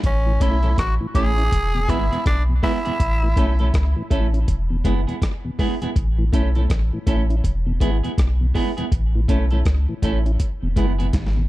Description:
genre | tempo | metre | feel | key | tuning
roots reggae | 81 BPM | 4/4 | swing 61% on 16ths | A major | A4 = 442 Hz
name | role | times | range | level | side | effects
warm sub bass | bass | 0.0-11.5 s | E1 to C#2 | -19 LUFS | equal | tube saturation
dusty soul sampler-style drum kit | drums | 0.0-11.4 s | hi-hat, kick drum, rim click, snare drum | -23 LUFS | equal | overdrive
raspy tenor saxophone | melody | 0.1-4.1 s | C#4 to G#4 | -25 LUFS | right 1 dB | dub echo
mellow tonewheel organ | accompaniment | 0.3-11.4 s | E2 to E4 | -28 LUFS | left 2 dB | overdrive, chorus vibrato, slow rotary speaker, slapback echo
clean electric guitar | accompaniment | 0.4-11.1 s | G#3 to A4 | -28 LUFS | right 4 dB | dub echo
room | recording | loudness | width
little or no reverb | dry, close 1970s-style studio recording | -18 LUFS | side -17 dB against mid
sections
0.0-11.5 A section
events
drum fill 11.1-11.5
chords
0.0 A; 1.5 E; 3.0 A; 4.5 E; 6.0 A; 7.4 E; 8.9 A; 10.4 E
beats
| 0.04 0.78 1.52 2.26 | 3.00 3.74 4.48 5.21 | 5.96 6.69 7.43 8.17 | 8.91 9.65 10.39 11.13

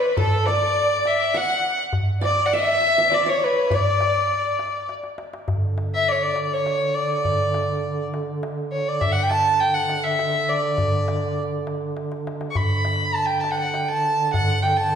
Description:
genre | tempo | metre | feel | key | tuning
Arabic maqam ensemble | 102 BPM | 3/4 | straight | D maqam ajam | A4 = 439 Hz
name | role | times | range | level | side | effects
warm violin | melody | 0.0-15.0 s | A4 to C#6 | -21 LUFS | left 1 dB | none
qanun | second line | 0.0-4.8 s | A4 to F#5 | -31 LUFS | right 2 dB | none
rich symphonic violin section | second line | 0.0-4.9 s | A4 to F#5 | -25 LUFS | right 1 dB | none
darbuka | percussion | 0.2-14.8 s | none | -26 LUFS | equal | none
dark duduk | drone | 5.5-15.0 s | D3 | -28 LUFS | right 3 dB | none
room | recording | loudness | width
wet scoring stage reverb, RT60 1.7 s | recorded in a church or concert hall | -19 LUFS | side -7 dB against mid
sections
0.0-5.5 A section; 5.5-15.0 B section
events
drum fill 4.9-5.5, 12.0-12.6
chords
none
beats
| 0.17 0.76 1.35 | 1.94 2.53 3.12 | 3.71 4.30 4.89 | 5.48 6.07 6.66 | 7.25 7.84 8.43 | 9.02 9.61 10.20 | 10.79 11.38 11.97 | 12.56 13.15 13.74 | 14.33 14.92

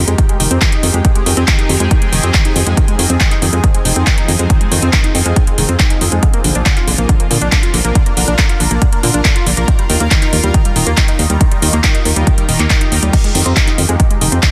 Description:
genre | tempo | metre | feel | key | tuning
uplifting trance | 139 BPM | 4/4 | straight | F dorian | A4 = 439 Hz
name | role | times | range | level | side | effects
shimmering ambient pad | sustained chords | 0.0-14.5 s | Eb3 to Bb4 | -24 LUFS | equal | chorus, built-in reverb, phaser, sidechain pumping
solid FM bass | bass | 0.0-14.4 s | Eb1 to Bb2 | -17 LUFS | equal | sidechain pumping
tight sequenced synth | arpeggios | 0.1-14.5 s | D3 to F4 | -22 LUFS | equal | chorus, cassette tape, sidechain pumping, dub echo
house drum kit | drums | 0.1-14.5 s | crash cymbal, handclaps, hi-hat | -18 LUFS | equal | sidechain pumping on hats, studio reverb, sidechain pumping on cymbals
electronic kick drum | drums | 0.2-14.5 s | none | -15 LUFS | equal | studio reverb
room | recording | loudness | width
digital ambience | dense, heavily limited modern master | -13 LUFS | mono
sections
0.0-14.5 A section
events
none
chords
0.0 Fm7; 6.2 Bb; 9.7 Ebadd9; 13.1 Fm7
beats
0.18 0.62 | 1.05 1.48 1.91 2.34 | 2.77 3.21 3.64 4.07 | 4.50 4.93 5.36 5.80 | 6.23 6.66 7.09 7.52 | 7.95 8.39 8.82 9.25 | 9.68 10.11 10.54 10.98 | 11.41 11.84 12.27 12.70 | 13.13 13.57 14.00 14.43

